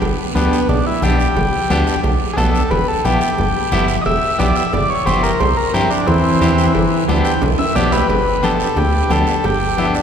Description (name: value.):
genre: latin, cumbia.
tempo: 178 BPM.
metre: 4/4.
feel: straight.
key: G major.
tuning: A4 = 441 Hz.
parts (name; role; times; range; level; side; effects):
plucky analog bass; bass; 0.0-10.0 s; E1 to G2; -19 LUFS; equal; none.
congas; percussion; 0.0-9.9 s; none; -24 LUFS; left 2 dB; none.
cowbell and timbales; percussion; 0.0-9.6 s; none; -26 LUFS; right 4 dB; none.
guiro; percussion; 0.0-10.0 s; none; -32 LUFS; right 6 dB; none.
combo organ; melody; 0.4-10.0 s; E3 to G5; -17 LUFS; equal; spring reverb.
electric guitar at the edge of break-up; accompaniment; 0.4-10.0 s; B3 to A4; -21 LUFS; left 1 dB; tremolo.
room: wet cathedral reverb, RT60 6.4 s.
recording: recorded in a church or concert hall.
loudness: -13 LUFS.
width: side -8 dB against mid.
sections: 0.0-8.1 A section; 8.1-10.0 B section.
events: transistor combo organ solo 0.0-8.1; drum fill 7.4-8.1.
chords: 0.0 G; 2.7 Em; 5.4 C; 6.8 G.